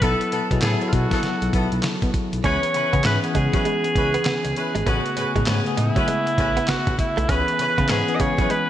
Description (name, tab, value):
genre	R&B, new jack swing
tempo	99 BPM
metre	4/4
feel	swing 62% on 16ths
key	C# minor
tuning	A4 = 440 Hz
part	bright alto saxophone	melody	0.0-8.7 s	E4 to D#5	-24 LUFS	right 1 dB	digital delay
part	bell-like tine electric piano	accompaniment	0.0-8.7 s	C#3 to A4	-26 LUFS	left 2 dB	fast stereo tremolo
part	warm horn section	stabs	0.0-8.5 s	B3 to B4	-29 LUFS	left 1 dB	none
part	smooth synth bass	bass	0.0-8.3 s	G#1 to C#3	-25 LUFS	equal	none
part	dusty soul sampler-style drum kit	drums	0.0-8.7 s	handclaps, hi-hat, kick drum, snare drum	-25 LUFS	equal	vintage 12-bit sampler grit
part	direct-recorded clean electric guitar	riff	2.4-8.7 s	F#3 to C#4	-30 LUFS	right 5 dB	ensemble chorus
room	moderate lush hall reverb, RT60 2.2 s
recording	bright 1980s-style digital production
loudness	-19 LUFS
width	side -11 dB against mid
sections	0.0-8.7 A section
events	none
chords	0.0 B7sus4; 2.4 C#m7; 4.9 Amaj9; 7.3 C#m7